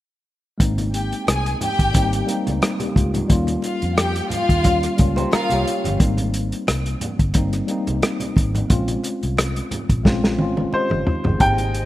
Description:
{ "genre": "lush 1970s-style soul", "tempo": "89 BPM", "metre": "4/4", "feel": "swing 54% on 16ths", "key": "Ab major", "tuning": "A4 = 440 Hz", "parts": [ { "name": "tine electric piano", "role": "accompaniment", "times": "0.6-11.9 s", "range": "G3 to Eb5", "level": "-25 LUFS", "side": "left 2 dB", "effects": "overdrive, fast stereo tremolo" }, { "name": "vintage muted fingered electric bass", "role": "bass", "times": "0.6-11.9 s", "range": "G1 to F2", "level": "-23 LUFS", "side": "equal", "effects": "none" }, { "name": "warm soul drum kit", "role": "drums", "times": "0.6-11.9 s", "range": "hi-hat, kick drum, rim click, snare drum, toms", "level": "-20 LUFS", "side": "equal", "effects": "none" }, { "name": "congas", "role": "percussion", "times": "0.6-11.7 s", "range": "none", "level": "-32 LUFS", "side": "right 3 dB", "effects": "none" }, { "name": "warm studio violin section", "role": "second line", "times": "0.9-5.8, 11.4-11.9 s", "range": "C4 to Ab5", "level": "-24 LUFS", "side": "left 1 dB", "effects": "none" }, { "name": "electric guitar through a small old amp", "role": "riff", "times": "5.2-6.0 s", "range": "Db4 to C5", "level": "-26 LUFS", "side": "right 2 dB", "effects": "vibrato effect" }, { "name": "clear grand piano", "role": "melody", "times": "10.7-11.9 s", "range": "C5 to G5", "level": "-21 LUFS", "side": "equal", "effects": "none" } ], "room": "light reverb, studio reverb", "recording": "rough home demo mix", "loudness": "-17 LUFS", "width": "side -15 dB against mid", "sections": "0.6-11.4 A section", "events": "drum fill 10.1-11.4", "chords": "0.6 Abmaj7; 3.3 Eb9; 6.0 Abmaj7; 8.7 Bbm9" }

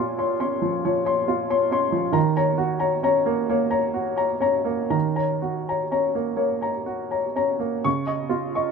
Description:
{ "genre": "neoclassical minimalist piano", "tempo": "40-46 BPM (dotted quarters)", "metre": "6/8", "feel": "rubato", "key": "unclear", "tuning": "A4 = 440 Hz", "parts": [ { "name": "clear upright piano", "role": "solo", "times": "0.0-8.7 s", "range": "Bb2 to Db6", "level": "-21 LUFS", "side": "equal", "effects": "none" } ], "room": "light reverb", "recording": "minimal, uncompressed stereo recording", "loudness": "-21 LUFS", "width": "side -5 dB against mid", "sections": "0.0-7.8 A section", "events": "none", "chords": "0.0 Bbmadd9; 2.2 Ebm7; 7.8 Dbadd9" }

